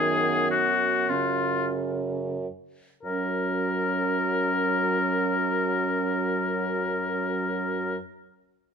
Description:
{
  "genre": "classical, slow romantic movement for wind quintet",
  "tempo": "28-37 BPM (dotted quarters)",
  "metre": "12/8",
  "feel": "rubato",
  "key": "F# major",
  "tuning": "A4 = 441 Hz",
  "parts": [
    { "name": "clear oboe", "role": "second line", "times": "0.0-8.0 s", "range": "E#4 to A#4", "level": "-26 LUFS", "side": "left 4 dB", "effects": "none" },
    { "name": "mellow clarinet", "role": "accompaniment", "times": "0.0-8.0 s", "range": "B3 to C#4", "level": "-32 LUFS", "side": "right 10 dB", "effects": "none" },
    { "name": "warm French horn", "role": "accompaniment", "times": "0.0-8.0 s", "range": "C#3 to F#3", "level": "-33 LUFS", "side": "left 1 dB", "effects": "none" },
    { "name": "mellow bassoon", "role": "bass", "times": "0.0-8.0 s", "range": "F#2", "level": "-31 LUFS", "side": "right 3 dB", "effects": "none" }
  ],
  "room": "moderate large studio reverb, RT60 1.2 s",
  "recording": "minimal, uncompressed stereo recording",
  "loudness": "-24 LUFS",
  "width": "side -6 dB against mid",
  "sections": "0.0-3.0 A section; 3.0-8.7 B section",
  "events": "slowing down 0.0-3.0",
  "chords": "0.0 C#7/F#; 3.0 F#"
}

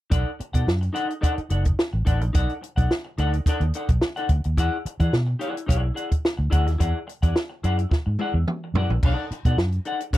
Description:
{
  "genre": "funk",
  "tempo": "108 BPM",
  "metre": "4/4",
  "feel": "straight",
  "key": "unclear",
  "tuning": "A4 = 440 Hz",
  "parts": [
    { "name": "semi-hollow electric guitar", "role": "accompaniment", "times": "0.1-10.2 s", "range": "D#4 to F#5", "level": "-29 LUFS", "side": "left 2 dB", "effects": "wide subtle chorus" },
    { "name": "vintage muted fingered electric bass", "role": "bass", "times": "0.1-10.2 s", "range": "F#1 to E3", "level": "-22 LUFS", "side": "equal", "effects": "none" },
    { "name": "compact cocktail drum kit", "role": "drums", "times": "0.1-10.2 s", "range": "crash cymbal, hi-hat, kick drum, snare drum, toms", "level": "-23 LUFS", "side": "equal", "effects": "none" }
  ],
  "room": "little or no reverb",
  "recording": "dry, close 1970s-style studio recording",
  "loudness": "-21 LUFS",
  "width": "side -15 dB against mid",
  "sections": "0.1-9.0 A section; 9.0-10.2 B section",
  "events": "drum fill 7.9-9.0",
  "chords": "0.1 B7#9; 4.6 E9; 9.0 B7#9"
}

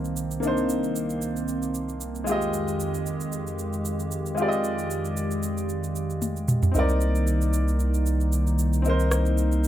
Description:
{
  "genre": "amapiano",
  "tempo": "114 BPM",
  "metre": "4/4",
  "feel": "swing 55% on 16ths",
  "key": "C minor",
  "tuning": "A4 = 441 Hz",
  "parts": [
    { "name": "clear concert grand piano", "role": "accompaniment", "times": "0.0-9.7 s", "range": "Ab3 to Eb5", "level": "-29 LUFS", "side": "left 1 dB", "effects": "plate reverb" },
    { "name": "hollow soft pad", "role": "sustained chords", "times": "0.0-9.7 s", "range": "C2 to G4", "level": "-28 LUFS", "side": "equal", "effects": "chorus" },
    { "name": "afro-pop drum kit", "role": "drums", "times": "0.0-9.7 s", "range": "rim click, shaker, toms", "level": "-30 LUFS", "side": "right 1 dB", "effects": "none" },
    { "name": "saturated sub bass", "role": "bass", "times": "6.7-9.7 s", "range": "C2", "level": "-22 LUFS", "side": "equal", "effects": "none" }
  ],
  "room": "moderate studio reverb, RT60 0.6 s",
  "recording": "rough home demo mix",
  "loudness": "-23 LUFS",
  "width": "side -12 dB against mid",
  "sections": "0.0-9.7 A section",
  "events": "drum fill 6.2-6.7",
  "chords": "0.0 Cm9; 2.3 Fm9; 6.7 Cm9"
}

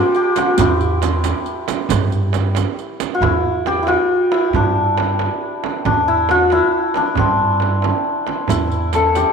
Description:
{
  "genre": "Persian modal ensemble",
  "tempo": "91 BPM (dotted quarters)",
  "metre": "6/8",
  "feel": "straight",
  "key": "E dastgah shur",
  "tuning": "A4 = 440 Hz",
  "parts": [
    { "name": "santur", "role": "melody", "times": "0.0-9.3 s", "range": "C4 to C5", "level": "-17 LUFS", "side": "left 2 dB", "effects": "none" },
    { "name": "riq", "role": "percussion", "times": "0.1-3.1, 8.5-9.3 s", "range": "none", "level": "-29 LUFS", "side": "right 14 dB", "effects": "none" },
    { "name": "tombak", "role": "percussion", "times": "0.1-9.3 s", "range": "none", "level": "-25 LUFS", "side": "right 8 dB", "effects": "none" },
    { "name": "frame drum", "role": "percussion", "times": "0.4-9.3 s", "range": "none", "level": "-24 LUFS", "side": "right 11 dB", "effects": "none" },
    { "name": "upright bass", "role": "bass", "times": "0.6-9.2 s", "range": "E2 to G2", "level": "-20 LUFS", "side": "equal", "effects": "none" }
  ],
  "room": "moderate plate reverb, RT60 3.5 s",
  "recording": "1960s-style stereo",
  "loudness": "-15 LUFS",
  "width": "side -6 dB against mid",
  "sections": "0.0-3.2 A section; 3.2-9.3 B section",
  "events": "none",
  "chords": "none"
}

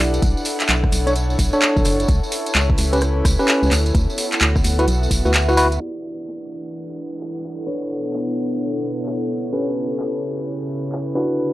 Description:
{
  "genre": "UK garage, two-step garage",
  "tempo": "129 BPM",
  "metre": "4/4",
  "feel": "swing 63% on 16ths",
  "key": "E dorian",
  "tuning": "A4 = 440 Hz",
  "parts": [
    { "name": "airy breathy pad", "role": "sustained chords", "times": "0.0-11.5 s", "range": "B2 to F#5", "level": "-30 LUFS", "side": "right 1 dB", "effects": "chorus, sidechain pumping" },
    { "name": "tine electric piano", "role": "stabs", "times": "0.0-11.5 s", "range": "C#4 to D5", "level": "-22 LUFS", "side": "equal", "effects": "low-pass filter, analog delay" },
    { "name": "organ-like FM bass", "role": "bass", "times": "0.0-5.8 s", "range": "F#1 to D2", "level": "-19 LUFS", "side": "equal", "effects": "tube saturation" },
    { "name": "warbly tape-like pad", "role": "texture", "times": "0.0-11.5 s", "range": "C#3 to F#5", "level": "-27 LUFS", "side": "left 1 dB", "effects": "chorus, built-in reverb, sidechain pumping" },
    { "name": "house drum kit", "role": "drums", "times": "0.1-11.3 s", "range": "handclaps, hi-hat, rim click", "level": "-22 LUFS", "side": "equal", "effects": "low-pass filter on hats, low-pass filter on snare" },
    { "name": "tambourine", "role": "percussion", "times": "0.1-5.8 s", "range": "none", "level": "-29 LUFS", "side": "right 1 dB", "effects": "none" },
    { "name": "electronic kick drum", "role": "drums", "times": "0.2-5.2 s", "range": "none", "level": "-20 LUFS", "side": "equal", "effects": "none" },
    { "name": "downlifter", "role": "sound effects", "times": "6.0-9.5 s", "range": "none", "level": "-44 LUFS", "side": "equal", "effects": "none" }
  ],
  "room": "light reverb",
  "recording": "dry, gritty hardware recording, cassette tape, low-pass filter",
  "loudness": "-17 LUFS",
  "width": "side -16 dB against mid",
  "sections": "0.0-5.8 A section; 5.8-11.5 B section",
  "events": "kick drops out 5.3-5.8; filter sweep on tine electric piano 5.8-11.5; filter sweep 5.8-11.5",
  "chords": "0.2 Bm9; 2.1 A9/C#; 3.7 D69; 5.8 Em7; 7.7 Bm9; 9.5 A9/C#"
}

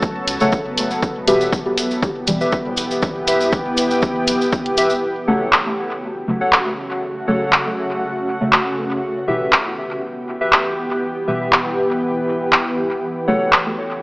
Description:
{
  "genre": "dub techno",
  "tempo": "120 BPM",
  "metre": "4/4",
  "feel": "straight",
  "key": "F# phrygian",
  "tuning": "A4 = 440 Hz",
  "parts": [
    { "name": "granular cloud pad", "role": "sustained chords", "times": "0.0-14.0 s", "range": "C#3 to A4", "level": "-22 LUFS", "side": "equal", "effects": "built-in reverb, sidechain pumping" },
    { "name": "deep mellow chord stab", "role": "stabs", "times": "0.0-13.4 s", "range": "B2 to A3", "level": "-23 LUFS", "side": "equal", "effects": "chorus, phaser, sidechain pumping, dub echo" },
    { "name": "soft dub sub bass", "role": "bass", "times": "0.0-5.0 s", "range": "E1 to C#2", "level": "-39 LUFS", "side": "equal", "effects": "sidechain pumping" },
    { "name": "electronic kick drum", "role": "drums", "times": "0.0-4.6 s", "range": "none", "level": "-22 LUFS", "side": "equal", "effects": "overdrive, studio reverb" },
    { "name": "cabasa", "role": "percussion", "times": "0.0-5.0 s", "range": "none", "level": "-27 LUFS", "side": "equal", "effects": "none" },
    { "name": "deep house drum kit", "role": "drums", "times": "0.3-13.6 s", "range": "handclaps, hi-hat", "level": "-16 LUFS", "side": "equal", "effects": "overdrive, studio reverb, dub echo" },
    { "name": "warbly lo-fi synth keys", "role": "riff", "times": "0.4-13.5 s", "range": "G4 to F#5", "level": "-23 LUFS", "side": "equal", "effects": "chorus, sidechain pumping, dub echo" }
  ],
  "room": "moderate lush hall reverb, RT60 1.8 s",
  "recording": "AM radio sound",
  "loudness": "-16 LUFS",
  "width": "side -24 dB against mid",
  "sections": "0.0-5.0 A section; 5.0-14.0 B section",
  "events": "none",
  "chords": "0.0 F#m; 1.0 Em; 5.0 F#m; 9.0 Em; 13.0 F#m"
}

